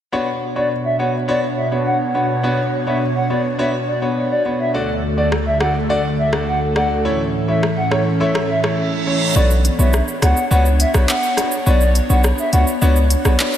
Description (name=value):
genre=dancehall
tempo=104 BPM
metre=4/4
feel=straight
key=B minor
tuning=A4 = 440 Hz
part: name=clear concert grand piano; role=accompaniment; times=0.1-13.6 s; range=A3 to D5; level=-22 LUFS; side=left 1 dB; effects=none
part: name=airy breathy pad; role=sustained chords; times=0.1-13.6 s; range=D2 to E5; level=-21 LUFS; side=equal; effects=chorus
part: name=hollow clarinet-like synth lead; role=melody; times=0.6-12.6 s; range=C#5 to F#5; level=-22 LUFS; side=equal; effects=chorus, tape echo
part: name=island pop drum kit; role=drums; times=5.3-13.6 s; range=handclaps, hi-hat, rim click, shaker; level=-23 LUFS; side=equal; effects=overdrive
part: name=reverse cymbal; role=sound effects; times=8.7-9.4 s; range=none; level=-25 LUFS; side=right 5 dB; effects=none
part: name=hard-hitting 808-style bass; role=bass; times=9.4-13.4 s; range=B1 to C#2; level=-14 LUFS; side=equal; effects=none
room=moderate lush hall reverb, RT60 2.2 s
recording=dreamy mix soaked in reverb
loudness=-15 LUFS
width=side -10 dB against mid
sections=0.1-9.4 A section; 9.4-13.6 B section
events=reverse cymbal 8.7-9.4; kick muted 9.4-13.6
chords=0.1 Bmadd9; 4.7 D; 7.0 A; 9.4 Bmadd9